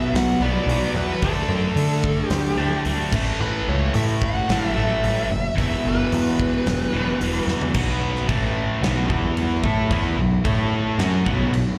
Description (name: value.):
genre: hard rock.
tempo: 110 BPM.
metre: 4/4.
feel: straight.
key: B minor.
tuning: A4 = 439 Hz.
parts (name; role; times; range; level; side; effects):
bluesy overdriven lead guitar; melody; 0.0-7.5 s; A4 to F#5; -30 LUFS; equal; distortion, slapback echo, digital delay.
cranked stack guitar; riff; 0.0-11.7 s; E2 to A4; -26 LUFS; equal; overdrive, slapback echo.
growling picked electric bass; bass; 0.1-11.8 s; E1 to D3; -25 LUFS; equal; overdrive.
huge arena drum kit; drums; 0.2-11.7 s; crash cymbal, hi-hat, kick drum, snare drum, toms; -29 LUFS; equal; none.
room: light reverb.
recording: live gig heard through the venue's PA, recital hall reverb.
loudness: -21 LUFS.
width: mono.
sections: 0.0-7.7 A section; 7.7-11.8 B section.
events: drum fill 7.5.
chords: 0.0 Bm; 1.2 D5; 3.1 A5; 5.6 E5; 7.7 B5; 8.3 A5; 8.8 B5; 9.1 E5; 9.6 B5; 10.5 A5; 11.0 B5.